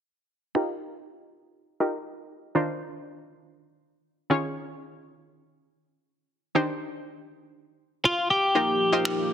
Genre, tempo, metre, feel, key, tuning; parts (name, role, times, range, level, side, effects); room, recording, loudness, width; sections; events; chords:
dance-pop; 120 BPM; 4/4; straight; Eb major; A4 = 439 Hz
analog pluck; accompaniment; 0.5-9.3 s; Eb3 to Db5; -27 LUFS; equal; chorus, low-pass filter
twelve-string electric guitar; melody; 8.1-9.3 s; F4 to G4; -22 LUFS; left 1 dB
soft supersaw; sustained chords; 8.6-9.3 s; F3 to G4; -28 LUFS; right 1 dB
finger snaps; drums; 9.1-9.2 s; -29 LUFS; right 1 dB; soft clipping on snare
moderate plate reverb, RT60 1.8 s, small room reverb; dense, heavily limited modern master; -24 LUFS; side -9 dB against mid
0.6-8.6 A section
filter sweep on synth pluck 0.6-8.6
0.6 Ebadd9; 2.6 Bbadd9/Eb; 4.3 Db/Eb; 6.6 Cmadd9/Eb; 8.6 Ebadd9